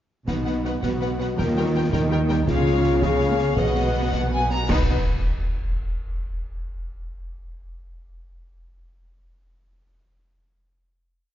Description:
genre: cinematic, heroic adventure film score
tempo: 109 BPM (dotted quarters)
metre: 6/8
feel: straight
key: B lydian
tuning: A4 = 440 Hz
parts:
  - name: rich symphonic violin section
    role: melody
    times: 0.3-4.9 s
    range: E#5 to G5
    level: -32 LUFS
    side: left 5 dB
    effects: none
  - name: rich studio violin section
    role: second line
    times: 0.3-4.9 s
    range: A#4 to A#5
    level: -31 LUFS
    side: left 2 dB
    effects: none
  - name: rich studio viola section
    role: accompaniment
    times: 0.3-4.9 s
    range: G3 to D#4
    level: -32 LUFS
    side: right 2 dB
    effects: none
  - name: mellow French horn section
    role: sustained chords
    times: 0.3-4.8 s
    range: D#4 to B4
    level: -26 LUFS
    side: left 3 dB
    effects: none
  - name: rich symphonic double bass section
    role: bass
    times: 0.3-4.9 s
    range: B1 to D#2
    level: -26 LUFS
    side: right 2 dB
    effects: none
  - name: warm symphonic cello section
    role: bass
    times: 0.3-4.9 s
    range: B2 to D#3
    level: -27 LUFS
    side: right 2 dB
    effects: none
  - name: concert snare drum, clash cymbals and concert bass drum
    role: drums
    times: 0.3-4.9 s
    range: none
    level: -28 LUFS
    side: equal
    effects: none
  - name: cymbal swell, clash cymbals and concert bass drum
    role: percussion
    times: 2.5-5.4 s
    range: none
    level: -31 LUFS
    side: equal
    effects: none
room: moderate scoring stage reverb, RT60 1.8 s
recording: dark, warm production, nothing above 7.5 kHz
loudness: -20 LUFS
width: side -11 dB against mid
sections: 0.3-4.7 theme; 4.7-5.8 final chord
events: band accent 4.7-5.1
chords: 0.3 B; 1.4 D#; 2.5 C#; 3.6 B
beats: | 0.28 0.83 | 1.38 1.93 | 2.48 3.02 | 3.58 4.13 | 4.69 5.24

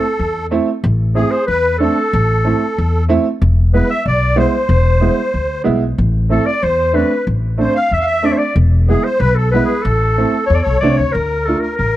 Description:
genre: klezmer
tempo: 93 BPM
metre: 2/4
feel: straight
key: A harmonic minor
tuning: A4 = 440 Hz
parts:
  - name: warm clarinet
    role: melody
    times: 0.0-12.0 s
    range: G#4 to F5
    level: -18 LUFS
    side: left 1 dB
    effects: none
  - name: musette accordion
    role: second line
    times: 0.0-12.0 s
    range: G#4 to F5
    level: -22 LUFS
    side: equal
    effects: none
  - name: warm upright piano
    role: accompaniment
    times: 0.0-11.6 s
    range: G#3 to F4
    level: -18 LUFS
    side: right 3 dB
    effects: none
  - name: upright bass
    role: bass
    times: 0.2-12.0 s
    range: E1 to E2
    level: -15 LUFS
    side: left 1 dB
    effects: none
room: small room ambience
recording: dry, close 1970s-style studio recording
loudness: -12 LUFS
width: side -14 dB against mid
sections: 0.8-11.1 A section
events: none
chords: 0.0 Am; 3.4 E; 6.0 Am; 8.6 E; 9.8 Am; 11.1 Dm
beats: 0.19 | 0.83 1.47 | 2.12 2.76 | 3.40 4.04 | 4.69 5.33 | 5.98 6.62 | 7.26 7.91 | 8.55 9.20 | 9.84 10.49 | 11.13 11.78

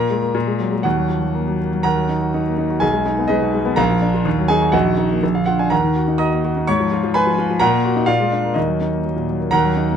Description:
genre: classical, virtuoso piano study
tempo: 125 BPM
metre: 2/4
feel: rubato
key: Eb minor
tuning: A4 = 444 Hz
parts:
  - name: clear grand piano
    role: solo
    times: 0.0-10.0 s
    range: Bb1 to Eb6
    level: -16 LUFS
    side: equal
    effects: none
room: light reverb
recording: close, detailed microphones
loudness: -16 LUFS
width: side -8 dB against mid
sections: 0.0-1.9 A section; 1.9-9.5 A section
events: none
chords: 0.3 Gbadd9/Bb; 0.8 Ebm; 2.8 Abm/Cb; 3.8 Bb; 4.3 Ebm; 4.7 Ebm/Bb; 5.2 Bb; 5.7 Ebm; 6.7 Fdim/Ab; 7.6 Ebm/Bb; 8.1 Bb7; 8.6 Ebm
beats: 0.35 | 0.85 1.35 | 1.85 2.34 | 2.82 3.29 | 3.78 4.25 | 4.73 5.22 | 5.71 6.19 | 6.67 7.15 | 7.62 8.08 | 8.56 9.05 | 9.54

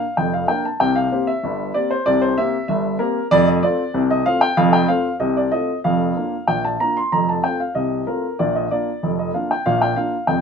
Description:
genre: ragtime piano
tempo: 95 BPM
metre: 2/4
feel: straight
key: Bb major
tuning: A4 = 442 Hz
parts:
  - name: warm upright piano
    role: solo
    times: 0.0-10.4 s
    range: F1 to C6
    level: -17 LUFS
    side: equal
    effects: none
room: moderate studio reverb, RT60 0.6 s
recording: minimal, uncompressed stereo recording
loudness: -17 LUFS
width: side -6 dB against mid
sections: 0.0-10.4 A section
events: none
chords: 0.0 Bb; 0.8 C5; 3.3 F; 5.8 Bb/F; 7.1 F; 8.4 Bb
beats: 0.17 | 0.80 1.43 | 2.06 2.69 | 3.32 3.95 | 4.58 5.21 | 5.85 6.48 | 7.12 7.75 | 8.39 9.02 | 9.65 10.28

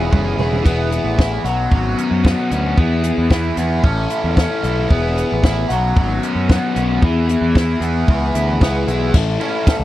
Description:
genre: indie rock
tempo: 113 BPM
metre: 4/4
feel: straight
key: unclear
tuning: A4 = 440 Hz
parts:
  - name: biting overdriven guitar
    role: riff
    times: 0.0-9.8 s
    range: E3 to G#4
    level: -24 LUFS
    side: right 8 dB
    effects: lush chorus, tape echo
  - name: crunchy overdriven guitar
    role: riff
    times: 0.0-9.8 s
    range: E3 to A4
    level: -20 LUFS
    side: left 4 dB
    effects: phaser
  - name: growling picked electric bass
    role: bass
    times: 0.0-9.8 s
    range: E1 to F#2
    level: -20 LUFS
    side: equal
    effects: overdrive
  - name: compact cocktail drum kit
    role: drums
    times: 0.0-9.8 s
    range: crash cymbal, hi-hat, kick drum, ride cymbal, snare drum, toms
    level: -15 LUFS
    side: equal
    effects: none
room: little or no reverb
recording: dry, close 1970s-style studio recording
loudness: -14 LUFS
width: side -14 dB against mid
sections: 0.7-9.1 A section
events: drum fill 0.0-0.7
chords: 0.0 E6; 0.7 E; 1.4 Bsus2; 2.8 E; 3.8 A; 4.9 E; 5.7 Bsus2; 7.0 E; 9.1 A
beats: 0.12 | 0.65 1.18 1.71 2.25 | 2.78 3.31 3.84 4.37 | 4.90 5.43 5.96 6.49 | 7.02 7.55 8.09 8.62 | 9.14 9.67

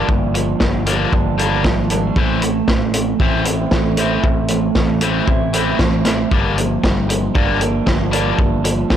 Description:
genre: indie rock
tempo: 116 BPM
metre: 4/4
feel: straight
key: G dorian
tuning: A4 = 441 Hz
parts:
  - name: crunchy overdriven guitar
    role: riff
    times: 0.0-9.0 s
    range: E3 to E4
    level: -20 LUFS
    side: left 6 dB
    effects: none
  - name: electric guitar through a small old amp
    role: riff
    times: 0.0-9.0 s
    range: G2 to E4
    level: -21 LUFS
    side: right 9 dB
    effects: lush chorus, tape echo
  - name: growling fingered electric bass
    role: bass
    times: 0.1-9.0 s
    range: G1 to A1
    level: -22 LUFS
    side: equal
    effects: overdrive
  - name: vintage drum kit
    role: drums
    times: 0.1-9.0 s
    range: hi-hat, kick drum, snare drum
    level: -18 LUFS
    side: equal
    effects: none
room: light reverb, small room ambience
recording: blown-out, overdriven recording, overdrive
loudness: -14 LUFS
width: side -10 dB against mid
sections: 0.0-9.0 A section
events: none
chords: 0.0 Gm7; 2.2 Am; 6.3 Gm7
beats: | 0.09 0.61 1.13 1.65 | 2.17 2.69 3.21 3.73 | 4.25 4.76 5.28 5.80 | 6.32 6.84 7.35 7.87 | 8.39 8.91

